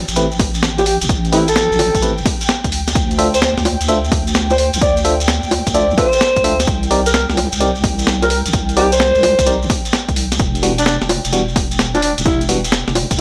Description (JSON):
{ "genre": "UK garage, two-step garage", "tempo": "129 BPM", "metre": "4/4", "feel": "swing 67% on 16ths", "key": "A minor", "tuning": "A4 = 440 Hz", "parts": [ { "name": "ethereal airy pad", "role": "sustained chords", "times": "0.0-13.2 s", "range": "G5", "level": "-31 LUFS", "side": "equal", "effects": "ensemble chorus, built-in reverb, sidechain pumping" }, { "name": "deep soft wobble bass", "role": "bass", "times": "0.0-13.2 s", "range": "D1 to D2", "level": "-23 LUFS", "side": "equal", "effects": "chorus" }, { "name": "breakbeat sampler-style drum kit", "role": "drums", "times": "0.1-13.2 s", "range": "bongos, hi-hat, snare drum", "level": "-21 LUFS", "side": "equal", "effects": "none" }, { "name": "shekere", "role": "percussion", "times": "0.1-13.2 s", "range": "none", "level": "-27 LUFS", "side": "equal", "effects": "none" }, { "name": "FM electric piano", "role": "stabs", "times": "0.2-13.2 s", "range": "E3 to E5", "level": "-21 LUFS", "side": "equal", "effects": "chorus, tape echo" }, { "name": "electronic kick drum", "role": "drums", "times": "0.4-13.2 s", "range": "none", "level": "-22 LUFS", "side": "equal", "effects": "overdrive" }, { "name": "raspy alto saxophone", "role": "melody", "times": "0.8-13.2 s", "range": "D4 to D5", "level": "-19 LUFS", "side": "equal", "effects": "none" } ], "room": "light reverb", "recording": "dry, gritty hardware recording", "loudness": "-15 LUFS", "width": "mono", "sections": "0.0-13.2 A section", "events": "none", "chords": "0.0 A7(no3); 2.7 Dm9; 6.7 C7(no3); 10.4 Em7" }